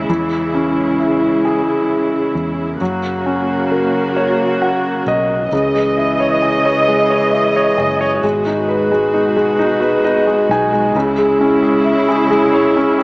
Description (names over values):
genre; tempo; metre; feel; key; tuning
six-eight pop ballad; 44 BPM (dotted quarters); 6/8; straight; unclear; A4 = 439 Hz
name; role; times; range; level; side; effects
clear concert grand piano; accompaniment; 0.0-13.0 s; C#3 to G#5; -14 LUFS; equal; none
warm studio string section; sustained chords; 0.0-13.0 s; B2 to D#5; -18 LUFS; right 1 dB; none
vintage muted fingered electric bass; bass; 0.0-13.0 s; F#1 to F#2; -28 LUFS; equal; none
room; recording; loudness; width
moderate plate reverb, RT60 3.2 s; small speaker sound; -12 LUFS; side -25 dB against mid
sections
0.0-5.5 A section; 5.5-13.0 B section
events
grand piano fill 4.2-5.5, 9.6-11.0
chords
0.1 C#m/E; 2.8 F#; 5.5 C#madd9; 8.2 G#m7; 11.0 C#m